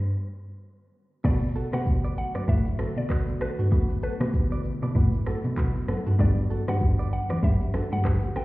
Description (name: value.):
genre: afrobeats.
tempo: 97 BPM.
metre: 4/4.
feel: swing 58% on 16ths.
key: B minor.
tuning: A4 = 441 Hz.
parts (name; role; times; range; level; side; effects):
mallet-like synth pluck; melody; 0.0-8.4 s; B4 to G5; -36 LUFS; equal; chorus, ping-pong delay.
mallet-like synth pluck; accompaniment; 1.2-6.8 s; D3 to F#4; -34 LUFS; left 2 dB; chorus.
glassy FM pad; sustained chords; 1.6-8.4 s; D3 to F#4; -35 LUFS; equal; ensemble chorus, built-in reverb.
direct-recorded clean electric guitar; riff; 1.2-8.4 s; D4 to D5; -37 LUFS; right 3 dB; ping-pong delay.
warm cello; bass; 1.2-8.2 s; E2 to B2; -27 LUFS; equal; none.
afro-pop drum kit; drums; 1.2-8.4 s; crash cymbal, handclaps, kick drum, rim click, shaker, toms; -25 LUFS; equal; none.
congas and bongos; percussion; 6.2-8.4 s; none; -37 LUFS; left 2 dB; none.
room: little or no reverb.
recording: heard muffled through a wall, stone room reverb, EQ.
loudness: -23 LUFS.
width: side -19 dB against mid.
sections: 0.0-1.2 A section; 1.2-8.4 B section.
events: break 0.0-1.2.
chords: 0.0 N.C.; 1.2 Bm7; 6.2 Gmaj7.